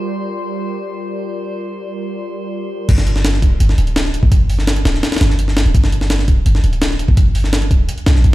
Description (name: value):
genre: drum and bass, jungle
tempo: 168 BPM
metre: 4/4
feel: straight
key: G minor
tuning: A4 = 439 Hz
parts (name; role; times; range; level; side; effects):
- airy breathy pad; sustained chords; 0.0-2.9 s; G3 to D5; -25 LUFS; equal; chorus
- drifting glass-harmonics texture; texture; 0.0-2.9 s; C5 to C6; -33 LUFS; left 3 dB; chorus, built-in reverb
- warm 808-style bass; bass; 2.9-8.3 s; D1 to C2; -14 LUFS; equal; none
- jungle sampler-style drum kit; drums; 2.9-8.3 s; crash cymbal, hi-hat, kick drum, snare drum; -15 LUFS; equal; none
room: digital ambience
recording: played on a big sound system in a bare room, large studio reverb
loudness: -13 LUFS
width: side -17 dB against mid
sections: 0.0-2.9 A section; 2.9-8.3 B section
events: drop 2.9-8.3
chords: 0.0 Bb6/G; 2.9 G5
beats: | 0.03 0.39 0.74 1.10 | 1.46 1.82 2.17 2.53 | 2.89 3.25 3.60 3.96 | 4.32 4.67 5.03 5.39 | 5.75 6.10 6.46 6.82 | 7.17 7.53 7.89 8.24